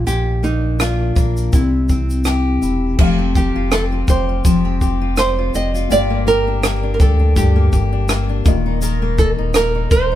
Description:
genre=acoustic pop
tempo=82 BPM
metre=4/4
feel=swing 55% on 16ths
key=F mixolydian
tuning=A4 = 439 Hz
part: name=nylon-string guitar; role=melody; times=0.0-10.2 s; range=Eb4 to Eb5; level=-20 LUFS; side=right 3 dB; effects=none
part: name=fingerpicked steel-string acoustic guitar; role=accompaniment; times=0.0-10.2 s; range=G2 to Bb4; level=-20 LUFS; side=left 3 dB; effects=none
part: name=warm sub bass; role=bass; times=0.0-10.2 s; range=Eb1 to D2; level=-19 LUFS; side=equal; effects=none
part: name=compact cocktail drum kit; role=drums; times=0.1-10.1 s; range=crash cymbal, kick drum, rim click, shaker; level=-17 LUFS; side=equal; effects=none
part: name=felt-muted upright piano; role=accompaniment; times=3.0-10.2 s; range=A3 to F5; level=-27 LUFS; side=left 7 dB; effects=none
room=light reverb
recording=band playing live in one room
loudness=-14 LUFS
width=side -12 dB against mid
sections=0.0-3.0 A section; 3.0-10.2 B section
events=none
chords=0.0 Bb; 1.5 C; 3.0 Fadd9; 5.9 Gm7; 8.5 Ebsus2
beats=| 0.07 0.80 1.53 2.26 | 2.99 3.72 4.45 5.18 | 5.91 6.63 7.36 8.09 | 8.82 9.55

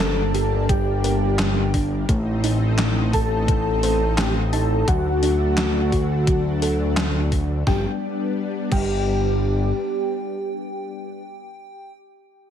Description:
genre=synthwave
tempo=86 BPM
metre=4/4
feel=straight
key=unclear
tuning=A4 = 441 Hz
part: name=warm velvety synth lead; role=melody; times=0.0-11.2 s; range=F#4 to A4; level=-26 LUFS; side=left 1 dB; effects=chorus, ping-pong delay
part: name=FM electric piano with soft pad layer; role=second line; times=0.0-11.9 s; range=F#5 to A5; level=-32 LUFS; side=equal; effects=chorus, tape echo
part: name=analog string pad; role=sustained chords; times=0.0-11.2 s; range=F#3 to Eb4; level=-27 LUFS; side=left 2 dB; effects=ensemble chorus, vintage 12-bit sampler grit, sidechain pumping
part: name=thumb-piano-like synth pluck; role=arpeggios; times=0.0-8.9 s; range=F#3 to C5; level=-30 LUFS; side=right 2 dB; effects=chorus, tape echo
part: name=fat analog bass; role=bass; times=0.0-9.7 s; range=G1 to D2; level=-22 LUFS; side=equal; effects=none
part: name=gated 80s digital drum machine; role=drums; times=0.0-8.9 s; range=crash cymbal, handclaps, hi-hat, snare drum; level=-27 LUFS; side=equal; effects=gated reverb, gated reverb snare, overdrive
part: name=electronic kick drum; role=drums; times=0.7-8.9 s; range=none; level=-22 LUFS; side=equal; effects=overdrive
room=light reverb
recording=none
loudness=-19 LUFS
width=side -9 dB against mid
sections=0.0-7.7 A section; 7.7-10.5 B section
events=none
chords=0.0 Gm; 2.1 Adim; 4.9 D; 7.7 G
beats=0.00 0.69 1.39 | 2.09 2.79 3.48 4.18 | 4.88 5.58 6.27 6.97 | 7.67 8.37 9.06 9.76

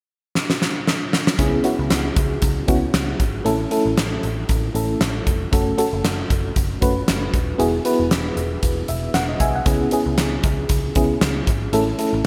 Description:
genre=1980s-style pop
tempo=116 BPM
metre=4/4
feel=swing 55% on 16ths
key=C# minor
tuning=A4 = 440 Hz
part: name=huge arena drum kit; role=drums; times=0.4-12.1 s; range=hi-hat, kick drum, snare drum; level=-23 LUFS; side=equal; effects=gated reverb
part: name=FM electric piano with tremolo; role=accompaniment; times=1.4-12.3 s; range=A3 to G#5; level=-24 LUFS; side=equal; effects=none
part: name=vintage muted picked electric bass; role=bass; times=1.4-12.2 s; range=D#1 to C#2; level=-28 LUFS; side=equal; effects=none
room=moderate plate reverb, RT60 2.0 s, small room ambience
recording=bright 1980s-style digital production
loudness=-20 LUFS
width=mono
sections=0.0-1.4 A section; 1.4-12.3 B section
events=drum fill 0.4-1.4; FM electric piano fill 8.6-9.7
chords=0.0 N.C.; 1.4 C#m7; 3.5 A; 5.5 F#m; 7.6 Eadd9; 9.7 C#m7; 11.7 A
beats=0.35 0.87 | 1.39 1.91 2.42 2.94 | 3.46 3.98 4.49 5.01 | 5.53 6.04 6.56 7.08 | 7.60 8.11 8.63 9.15 | 9.66 10.18 10.70 11.22 | 11.73 12.25

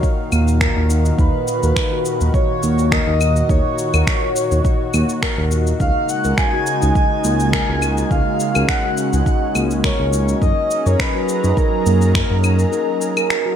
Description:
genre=organic downtempo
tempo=104 BPM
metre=4/4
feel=swing 53% on 16ths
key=Eb minor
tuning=A4 = 440 Hz
part: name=breathy flute-like synth lead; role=melody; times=0.0-13.6 s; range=Bb4 to Ab5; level=-22 LUFS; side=right 1 dB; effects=wide subtle chorus, ping-pong delay
part: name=warm analog pad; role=sustained chords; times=0.0-13.6 s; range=Bb2 to Bb5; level=-24 LUFS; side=right 2 dB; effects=chorus, sidechain pumping
part: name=electronic cabasa, claves and finger snaps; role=drums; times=0.0-13.4 s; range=none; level=-24 LUFS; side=left 1 dB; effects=gated reverb
part: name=electronic kick drum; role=drums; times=0.0-12.3 s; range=none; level=-19 LUFS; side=equal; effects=none
part: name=bronze singing bowl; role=texture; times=0.0-13.6 s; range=Bb5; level=-45 LUFS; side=left 2 dB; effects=none
part: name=handpan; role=arpeggios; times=0.3-13.6 s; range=Bb3 to Bb4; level=-24 LUFS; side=left 3 dB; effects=none
part: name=smooth synth bass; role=bass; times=0.3-12.7 s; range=Db2 to Gb2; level=-18 LUFS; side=equal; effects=none
room=light reverb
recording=bright 1980s-style digital production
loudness=-15 LUFS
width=side -9 dB against mid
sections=0.0-13.6 A section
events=break 12.7-13.6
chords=0.0 Ebm9; 5.8 Dbsus24; 10.4 Gbadd9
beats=0.03 0.61 | 1.19 1.76 2.34 2.92 | 3.50 4.07 4.65 5.23 | 5.80 6.38 6.96 7.53 | 8.11 8.69 9.27 9.84 | 10.42 10.99 11.57 12.15 | 12.73 13.30

